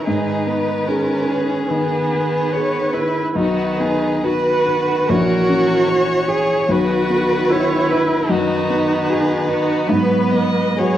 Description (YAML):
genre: classical, slow romantic movement for piano quintet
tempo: 73 BPM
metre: 4/4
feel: uneven beats, rubato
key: unclear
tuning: A4 = 438 Hz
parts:
  - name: warm violin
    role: melody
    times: 0.0-11.0 s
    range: F#4 to Eb5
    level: -24 LUFS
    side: left 3 dB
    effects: none
  - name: warm cello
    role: second line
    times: 0.0-11.0 s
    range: D#3 to Gb3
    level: -24 LUFS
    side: right 1 dB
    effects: none
  - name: warm violin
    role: second line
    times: 0.0-11.0 s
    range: B4 to C#5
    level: -26 LUFS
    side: left 1 dB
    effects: none
  - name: dark baby grand piano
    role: accompaniment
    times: 0.0-11.0 s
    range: A#1 to C#5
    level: -21 LUFS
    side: left 1 dB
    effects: none
  - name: warm viola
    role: accompaniment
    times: 0.0-11.0 s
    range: Cb4 to B4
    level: -19 LUFS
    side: right 2 dB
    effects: none
room: wet stone room reverb, RT60 1.4 s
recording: worn, warbling old tape, cassette tape, warbly pitch drift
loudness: -15 LUFS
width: side -11 dB against mid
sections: 0.0-11.0 A section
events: none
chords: 0.1 G#m; 3.4 B; 5.1 F#7/A#; 6.7 B; 9.9 Abm7